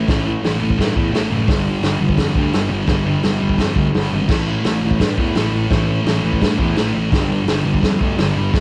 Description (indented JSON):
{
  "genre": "garage rock duo or trio",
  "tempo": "170 BPM",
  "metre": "4/4",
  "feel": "straight",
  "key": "unclear",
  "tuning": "A4 = 440 Hz",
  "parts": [
    { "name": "thick fuzz guitar", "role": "riff", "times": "0.0-8.6 s", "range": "G2 to A3", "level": "-21 LUFS", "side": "equal", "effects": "distortion, cassette tape" },
    { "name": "fuzz fingered electric bass", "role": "bass", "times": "0.0-8.6 s", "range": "F#1 to G2", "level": "-24 LUFS", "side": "equal", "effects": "overdrive" },
    { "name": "vintage drum kit", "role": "drums", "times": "0.1-8.6 s", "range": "crash cymbal, hi-hat, kick drum, snare drum", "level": "-22 LUFS", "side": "equal", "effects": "cassette tape" }
  ],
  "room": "little or no reverb",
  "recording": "home recording on cassette",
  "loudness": "-18 LUFS",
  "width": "mono",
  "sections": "0.0-8.6 A section",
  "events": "none",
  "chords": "0.0 A5; 1.5 G5; 4.3 A5; 7.1 G5"
}